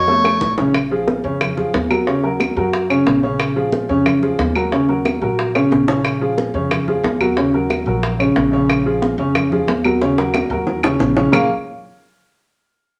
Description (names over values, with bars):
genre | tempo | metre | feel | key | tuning
Afro-Cuban jazz | 181 BPM | 4/4 | straight | Bb minor | A4 = 439 Hz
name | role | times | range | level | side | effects
clear soprano saxophone | melody | 0.0-0.5 s | Db5 | -17 LUFS | equal | none
warm upright piano | accompaniment | 0.0-11.5 s | C#3 to F5 | -19 LUFS | equal | none
upright bass | bass | 0.0-11.5 s | Bb1 to Gb2 | -28 LUFS | equal | none
bongos | percussion | 0.1-11.4 s | none | -25 LUFS | equal | none
congas | percussion | 0.1-11.4 s | none | -27 LUFS | equal | none
claves | percussion | 0.3-11.4 s | none | -26 LUFS | equal | none
room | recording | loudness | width
wet large studio reverb, RT60 0.8 s | none | -17 LUFS | mono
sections
0.7-11.3 A section; 11.3-12.6 B section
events
drum fill 0.1-0.7, 5.6-6.0, 10.0-11.3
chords
0.1 Faug; 0.7 Bbm7; 2.1 Ebm7; 3.4 Bbm7; 4.7 Ebm7; 6.0 Bbm7; 7.4 Ebm7; 8.7 Bbm7; 10.0 Ebm7; 11.3 Bbm7